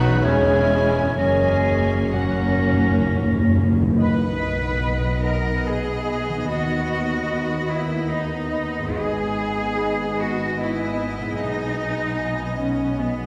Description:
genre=classical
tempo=62-78 BPM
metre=3/4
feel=rubato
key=B major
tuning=A4 = 440 Hz
part: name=rich chamber violin section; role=melody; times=0.0-13.3 s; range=F#5 to B5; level=-40 LUFS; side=equal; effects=none
part: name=concert flute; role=second line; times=0.0-13.1 s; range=G#5 to A#6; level=-36 LUFS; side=equal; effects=none
part: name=mellow clarinet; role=second line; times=0.0-13.1 s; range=C#4 to D#5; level=-34 LUFS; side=equal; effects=none
part: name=rich chamber violin section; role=second line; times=0.0-13.3 s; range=C#4 to D#5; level=-37 LUFS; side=equal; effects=none
part: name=rich chamber viola section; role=accompaniment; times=0.0-13.3 s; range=F#3 to C#4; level=-32 LUFS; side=equal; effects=none
part: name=mellow French horn section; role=sustained chords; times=0.0-13.3 s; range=F#3 to D#4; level=-34 LUFS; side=equal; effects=none
part: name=concert harp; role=arpeggios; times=0.0-13.3 s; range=E2 to C#5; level=-30 LUFS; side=equal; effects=none
part: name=mellow trumpet section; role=stabs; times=0.0-3.1 s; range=F#4 to B4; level=-34 LUFS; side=equal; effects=none
part: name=clear chamber cello section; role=bass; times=0.0-13.3 s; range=E2 to B4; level=-29 LUFS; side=equal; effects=none
part: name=rich studio double bass section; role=bass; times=0.0-13.3 s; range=E1 to D#2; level=-29 LUFS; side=equal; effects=none
part: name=timpani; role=percussion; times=1.2-5.2 s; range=F#2 to B2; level=-25 LUFS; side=equal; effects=none
room=wet scoring stage reverb, RT60 1.9 s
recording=heard from further back in the room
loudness=-22 LUFS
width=mono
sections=0.0-4.0 A section; 4.0-13.3 B section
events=timpani fill 1.2-4.0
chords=0.2 C#m/E; 1.2 F#; 4.0 B; 6.5 B/D#; 9.0 G#m; 11.4 G#m/B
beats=0.24 | 1.18 2.14 3.08 | 3.99 4.83 5.64 | 6.46 7.28 8.08 | 8.96 9.78 10.56 | 11.35 12.17 12.98

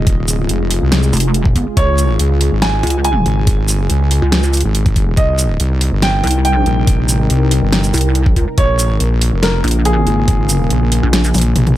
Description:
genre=heavy wobble dubstep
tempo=141 BPM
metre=4/4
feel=half-time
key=unclear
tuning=A4 = 440 Hz
part: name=warm baby grand piano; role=melody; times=0.0-11.8 s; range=Ab4 to Ab5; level=-22 LUFS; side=right 2 dB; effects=ping-pong delay
part: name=lush unison pad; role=sustained chords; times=0.0-11.8 s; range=C3 to Bb4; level=-21 LUFS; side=left 1 dB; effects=chorus, sidechain pumping
part: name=wobble bass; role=bass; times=0.0-11.8 s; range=Eb1 to Db2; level=-14 LUFS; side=equal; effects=chorus, overdrive
part: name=dubstep drum kit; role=drums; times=0.1-11.7 s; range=hi-hat, shaker, snare drum, toms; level=-17 LUFS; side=equal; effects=none
part: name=electronic kick drum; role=drums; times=0.1-10.4 s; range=none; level=-14 LUFS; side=equal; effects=none
part: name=pulsing pluck wobble bass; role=bass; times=1.1-11.3 s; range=F1 to Db2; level=-14 LUFS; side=equal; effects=chorus, overdrive
room=little or no reverb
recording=none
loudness=-12 LUFS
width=side -14 dB against mid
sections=0.0-11.8 A section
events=kick drops out 11.1-11.8; drum fill 11.3-11.8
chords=0.0 Fm; 1.8 Db; 5.2 Cm7; 8.6 Bbm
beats=| 0.07 0.49 0.92 1.34 | 1.77 2.19 2.62 3.04 | 3.47 3.90 4.32 4.75 | 5.17 5.60 6.02 6.45 | 6.88 7.30 7.73 8.15 | 8.58 9.00 9.43 9.85 | 10.28 10.71 11.13 11.56

